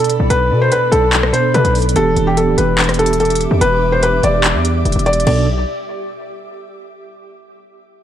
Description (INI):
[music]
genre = hip hop, trap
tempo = 145 BPM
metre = 4/4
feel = half-time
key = B minor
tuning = A4 = 440 Hz
[part]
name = felt-muted upright piano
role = melody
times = 0.0-5.5 s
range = G4 to D5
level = -16 LUFS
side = equal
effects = tape echo
[part]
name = mellow tine electric piano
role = accompaniment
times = 0.0-5.5 s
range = B2 to A4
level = -19 LUFS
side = right 4 dB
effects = ensemble chorus
[part]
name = ethereal airy pad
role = sustained chords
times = 0.0-5.5 s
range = G4 to D6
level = -25 LUFS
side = left 1 dB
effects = ensemble chorus, built-in reverb, tremolo
[part]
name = trap drum kit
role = drums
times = 0.0-5.4 s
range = crash cymbal, handclaps, hi-hat, rim click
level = -19 LUFS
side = left 1 dB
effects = vintage 12-bit sampler grit
[part]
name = distorted 808-style bass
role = bass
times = 0.2-5.7 s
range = D1 to B2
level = -17 LUFS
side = left 1 dB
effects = distortion
[sound]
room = light reverb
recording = none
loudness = -12 LUFS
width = side -10 dB against mid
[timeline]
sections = 0.0-5.3 A section; 5.3-6.9 B section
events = none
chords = 0.0 Bm7; 2.0 Em7; 5.3 Bm7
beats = | 0.30 0.72 1.13 1.54 | 1.96 2.37 2.79 3.20 | 3.61 4.03 4.44 4.85 | 5.27